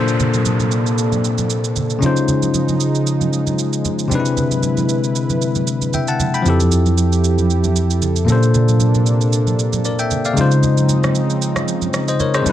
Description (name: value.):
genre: amapiano.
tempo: 115 BPM.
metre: 4/4.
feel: swing 55% on 16ths.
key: unclear.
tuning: A4 = 439 Hz.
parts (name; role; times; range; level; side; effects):
bell-like tine electric piano; accompaniment; 0.0-12.5 s; Bb2 to B5; -18 LUFS; left 3 dB; none.
warm analog pad; sustained chords; 0.0-12.5 s; C3 to B4; -23 LUFS; right 2 dB; chorus.
downlifter; sound effects; 0.0-2.3 s; none; -29 LUFS; right 2 dB; none.
electronic shaker and rim click; drums; 0.1-12.5 s; none; -25 LUFS; right 6 dB; none.
congas; percussion; 0.2-12.5 s; none; -25 LUFS; right 5 dB; none.
bell-like tine electric piano; bass; 6.5-12.4 s; F2 to Db3; -18 LUFS; right 1 dB; none.
room: light reverb.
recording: dark, warm production.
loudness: -14 LUFS.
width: side -12 dB against mid.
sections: 0.0-12.5 A section.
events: none.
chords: 0.0 Bbmaj9; 2.0 Dbmaj9; 4.1 Cmaj9; 6.5 Fmaj9; 8.3 Bbmaj9; 10.4 Dbmaj9.